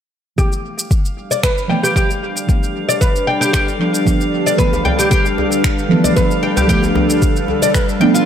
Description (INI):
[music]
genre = organic downtempo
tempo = 114 BPM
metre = 4/4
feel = straight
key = G mixolydian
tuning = A4 = 440 Hz
[part]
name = deep mellow chord stab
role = accompaniment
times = 0.4-8.3 s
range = E3 to D4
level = -19 LUFS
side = right 3 dB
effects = chorus, phaser, sidechain pumping, dub echo
[part]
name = bowed-like drone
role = sustained chords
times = 1.3-8.3 s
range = D3 to B4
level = -20 LUFS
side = left 1 dB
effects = built-in reverb, sidechain pumping
[part]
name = oud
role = arpeggios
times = 0.4-8.3 s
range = F4 to G5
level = -19 LUFS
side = left 1 dB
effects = low-pass filter, analog delay
[part]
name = electronic kick drum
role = drums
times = 0.4-7.9 s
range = none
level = -16 LUFS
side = equal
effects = none
[part]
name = electronic shaker and finger snaps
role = drums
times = 0.4-8.3 s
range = none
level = -24 LUFS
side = equal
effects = dub echo
[part]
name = drifting glass-harmonics texture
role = texture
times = 1.1-8.3 s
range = F5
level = -27 LUFS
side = right 1 dB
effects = chorus, built-in reverb
[part]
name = djembe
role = percussion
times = 4.7-8.1 s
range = none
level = -23 LUFS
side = equal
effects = dub echo
[sound]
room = moderate plate reverb, RT60 2.0 s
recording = echo-heavy mix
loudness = -13 LUFS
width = side -9 dB against mid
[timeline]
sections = 0.4-8.3 A section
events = filter sweep on synth stab 0.4-8.3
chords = 0.4 G13